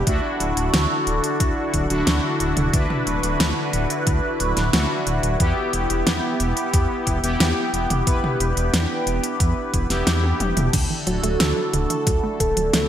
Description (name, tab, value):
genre	synthwave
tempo	90 BPM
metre	4/4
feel	straight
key	unclear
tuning	A4 = 440 Hz
part	phased analog pad	sustained chords	0.0-12.9 s	D3 to B4	-26 LUFS	equal	phaser, chorus, sidechain pumping
part	analog synth brass	stabs	0.0-10.7 s	B3 to B4	-25 LUFS	left 1 dB	chorus, digital delay
part	dark detuned saw bass	bass	0.0-12.9 s	D1 to E2	-24 LUFS	equal	sidechain pumping
part	electronic kick drum	drums	0.1-12.5 s	none	-23 LUFS	equal	overdrive, studio ambience
part	pop drum kit	drums	0.1-12.9 s	crash cymbal, hi-hat, snare drum, toms	-23 LUFS	equal	studio ambience
part	wide unison pluck	arpeggios	10.7-12.9 s	D3 to A3	-28 LUFS	right 2 dB	digital delay
part	soft octave-layered synth lead	melody	11.1-12.9 s	F#4 to A4	-24 LUFS	right 1 dB	chorus
room	moderate lush hall reverb, RT60 1.5 s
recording	bright 1980s-style digital production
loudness	-18 LUFS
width	side -10 dB against mid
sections	0.0-12.9 A section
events	drum fill 10.2-10.7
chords	0.1 Dadd9; 5.4 Em; 10.7 Dadd9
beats	| 0.07 0.74 1.40 2.07 | 2.74 3.40 4.07 4.74 | 5.40 6.07 6.74 7.40 | 8.07 8.74 9.40 10.07 | 10.74 11.40 12.07 12.74